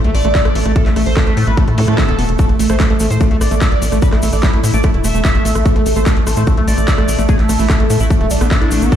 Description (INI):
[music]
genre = psychedelic trance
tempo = 147 BPM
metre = 4/4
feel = straight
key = unclear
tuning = A4 = 438 Hz
[part]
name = overdriven synth lead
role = melody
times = 0.0-9.0 s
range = A3 to E5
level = -20 LUFS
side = equal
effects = phaser, sidechain pumping, digital delay
[part]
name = bubbling stepped-filter texture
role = sustained chords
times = 0.0-9.0 s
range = A3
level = -22 LUFS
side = right 4 dB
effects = chorus, built-in reverb, sidechain pumping
[part]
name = screaming distorted acid line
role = riff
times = 0.0-9.0 s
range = A3 to E4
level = -22 LUFS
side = moving between left 4 dB and right 6 dB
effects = distortion, chorus, auto-pan, sidechain pumping, dub echo
[part]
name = tight sequencer bass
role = bass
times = 0.0-8.9 s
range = E1 to A2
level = -15 LUFS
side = equal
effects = none
[part]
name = drum and bass drum kit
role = drums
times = 0.0-9.0 s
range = handclaps, hi-hat, rim click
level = -23 LUFS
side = equal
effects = overdrive, small room ambience
[part]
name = electronic kick drum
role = drums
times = 0.3-9.0 s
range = none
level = -13 LUFS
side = equal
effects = overdrive, small room ambience
[part]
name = zap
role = sound effects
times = 1.8-1.9 s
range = none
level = -24 LUFS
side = equal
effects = none
[part]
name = tube shaker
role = percussion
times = 2.4-9.0 s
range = none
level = -28 LUFS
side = left 4 dB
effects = none
[sound]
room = digital ambience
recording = played on a big sound system in a bare room, large studio reverb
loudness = -11 LUFS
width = side -10 dB against mid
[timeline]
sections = 0.0-9.0 A section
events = none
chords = 0.0 A5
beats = 0.35 | 0.76 1.17 1.57 1.98 | 2.39 2.80 3.21 3.62 | 4.02 4.43 4.84 5.25 | 5.66 6.06 6.47 6.88 | 7.29 7.70 8.11 8.51 | 8.92